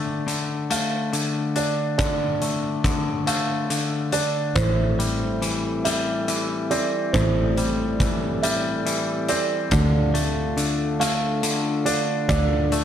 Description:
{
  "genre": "post-rock",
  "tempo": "47 BPM (dotted quarters)",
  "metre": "6/8",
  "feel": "straight",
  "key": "unclear",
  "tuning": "A4 = 441 Hz",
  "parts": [
    { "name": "felt-muted upright piano", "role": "arpeggios", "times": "0.0-12.8 s", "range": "C5 to F5", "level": "-28 LUFS", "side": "right 6 dB", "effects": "analog delay" },
    { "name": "twangy electric guitar", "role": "arpeggios", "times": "0.0-12.8 s", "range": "A2 to D4", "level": "-25 LUFS", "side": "left 4 dB", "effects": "analog delay" },
    { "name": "big rock drum kit", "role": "drums", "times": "0.3-12.8 s", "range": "hi-hat, kick drum", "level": "-26 LUFS", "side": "equal", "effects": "none" },
    { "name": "glass harmonica", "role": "sustained chords", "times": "4.6-12.8 s", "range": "C4 to F5", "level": "-30 LUFS", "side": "right 1 dB", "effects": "none" },
    { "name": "fingered electric bass", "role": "bass", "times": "4.6-12.8 s", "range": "A1 to D2", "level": "-24 LUFS", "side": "equal", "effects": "none" }
  ],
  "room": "light reverb, studio reverb",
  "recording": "dark, warm production",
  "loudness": "-20 LUFS",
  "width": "side -9 dB against mid",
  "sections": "0.0-12.8 A section",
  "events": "none",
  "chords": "0.0 Dm; 4.6 Am7; 9.7 Dm"
}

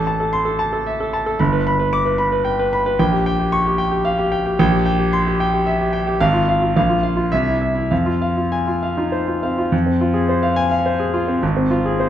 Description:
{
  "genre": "classical, virtuoso piano study",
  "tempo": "97-115 BPM",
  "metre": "3/4",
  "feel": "rubato",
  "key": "F minor",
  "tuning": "A4 = 436 Hz",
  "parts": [
    { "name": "clear concert grand piano", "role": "solo", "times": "0.0-12.1 s", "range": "G1 to D6", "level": "-16 LUFS", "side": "equal", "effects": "none" }
  ],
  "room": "moderate recital hall reverb, RT60 1.6 s",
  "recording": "none",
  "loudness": "-16 LUFS",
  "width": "side -10 dB against mid",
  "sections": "0.0-9.7 A section; 9.7-12.1 B section",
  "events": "none",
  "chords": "0.0 Am; 1.4 G; 3.0 Gm7b5/Bb; 4.6 C7/Bb; 6.2 Fm/Ab; 6.8 Bb5; 7.3 C; 7.9 Fm; 11.4 Fm/Ab"
}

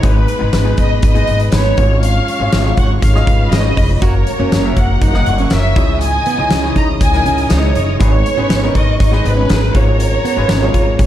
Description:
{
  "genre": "piano-driven pop",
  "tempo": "120 BPM",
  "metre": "4/4",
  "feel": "straight",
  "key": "unclear",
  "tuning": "A4 = 440 Hz",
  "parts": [
    { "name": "warm studio violin section", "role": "melody", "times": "0.0-11.1 s", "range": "B4 to A#5", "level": "-19 LUFS", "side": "equal", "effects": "none" },
    { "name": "warm studio violin section", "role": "second line", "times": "0.0-11.1 s", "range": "G#4 to D#6", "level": "-27 LUFS", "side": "equal", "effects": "none" },
    { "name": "bright upright piano", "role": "accompaniment", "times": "0.0-11.1 s", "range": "G#2 to E5", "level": "-22 LUFS", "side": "left 4 dB", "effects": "none" },
    { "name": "mellow tonewheel organ", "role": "sustained chords", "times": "0.0-11.1 s", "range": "C#3 to D#5", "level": "-27 LUFS", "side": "right 2 dB", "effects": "none" },
    { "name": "upright bass", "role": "bass", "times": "0.0-11.1 s", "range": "E#1 to C#2", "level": "-16 LUFS", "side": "equal", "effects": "none" },
    { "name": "huge arena drum kit", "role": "drums", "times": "0.0-11.1 s", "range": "hi-hat, kick drum, snare drum", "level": "-16 LUFS", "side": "equal", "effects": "none" },
    { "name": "fingerpicked plugged-in steel-string acoustic guitar", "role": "riff", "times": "4.0-10.9 s", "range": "B3 to G#4", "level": "-23 LUFS", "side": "right 6 dB", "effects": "none" }
  ],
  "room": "light reverb, small room ambience",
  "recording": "dark, warm production",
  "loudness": "-11 LUFS",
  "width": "side -12 dB against mid",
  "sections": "0.0-11.1 A section",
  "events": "none",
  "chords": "0.0 G#m; 1.8 C#/G#; 4.0 F#; 5.8 C#madd9; 8.0 G#m; 9.7 C#/G#"
}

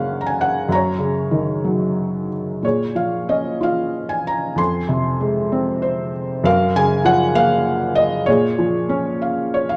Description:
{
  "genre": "classical, lyrical solo piano",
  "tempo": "60-67 BPM (dotted quarters)",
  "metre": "6/8",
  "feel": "rubato",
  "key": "Bb minor",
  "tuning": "A4 = 440 Hz",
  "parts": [
    { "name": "felt-muted upright piano", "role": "solo", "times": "0.0-9.8 s", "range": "F2 to C6", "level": "-19 LUFS", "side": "equal", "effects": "none" }
  ],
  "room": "moderate recital hall reverb, RT60 1.5 s",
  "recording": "dark, warm production",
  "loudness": "-19 LUFS",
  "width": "mono",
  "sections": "0.0-9.8 A section",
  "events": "felt piano fill 5.5-6.5, 9.2-9.8",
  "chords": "0.0 Gb; 0.7 Ebm7/Gb; 2.6 Bbm7; 4.6 Fm; 6.5 Gbmaj7; 8.3 Bbm7"
}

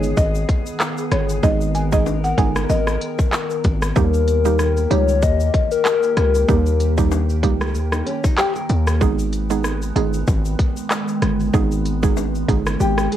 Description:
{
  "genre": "dancehall",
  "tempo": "95 BPM",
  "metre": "4/4",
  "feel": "swing 56% on 16ths",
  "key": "G# harmonic minor",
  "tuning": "A4 = 440 Hz",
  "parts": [
    { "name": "mallet-like synth pluck", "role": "accompaniment", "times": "0.0-12.7 s", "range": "G3 to G#4", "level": "-23 LUFS", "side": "right 11 dB", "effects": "chorus, cassette tape" },
    { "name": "glassy FM pad", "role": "sustained chords", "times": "0.0-13.2 s", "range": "D#3 to A#4", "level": "-26 LUFS", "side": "equal", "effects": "ensemble chorus, built-in reverb, sidechain pumping, cassette tape" },
    { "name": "hard-hitting 808-style bass", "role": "bass", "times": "0.0-13.1 s", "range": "G1 to D#2", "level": "-20 LUFS", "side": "equal", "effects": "none" },
    { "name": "island pop drum kit", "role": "drums", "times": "0.0-13.2 s", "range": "handclaps, hi-hat, kick drum, rim click, shaker", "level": "-21 LUFS", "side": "equal", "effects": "overdrive, vintage 12-bit sampler grit, cassette tape" },
    { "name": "tube shaker and timbales", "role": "percussion", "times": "0.0-13.1 s", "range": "none", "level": "-34 LUFS", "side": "left 12 dB", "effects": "none" },
    { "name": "buzzing marimba with medium mallets", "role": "melody", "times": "0.2-3.2 s", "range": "C#5 to G#5", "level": "-25 LUFS", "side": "equal", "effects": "cassette tape, analog delay" },
    { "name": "hollow clarinet-like synth lead", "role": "second line", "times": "4.0-6.9 s", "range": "A#4 to D#5", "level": "-20 LUFS", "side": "left 7 dB", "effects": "chorus, cassette tape, analog delay" },
    { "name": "nylon-string guitar", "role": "arpeggios", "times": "7.9-9.0, 12.8-13.2 s", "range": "C#4 to A#4", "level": "-22 LUFS", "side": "left 3 dB", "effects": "cassette tape" }
  ],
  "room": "light reverb",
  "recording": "home recording on cassette",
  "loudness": "-16 LUFS",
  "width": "side -11 dB against mid",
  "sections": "0.0-13.2 A section",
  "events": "none",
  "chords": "0.0 G#m; 4.0 D#; 9.0 G#m"
}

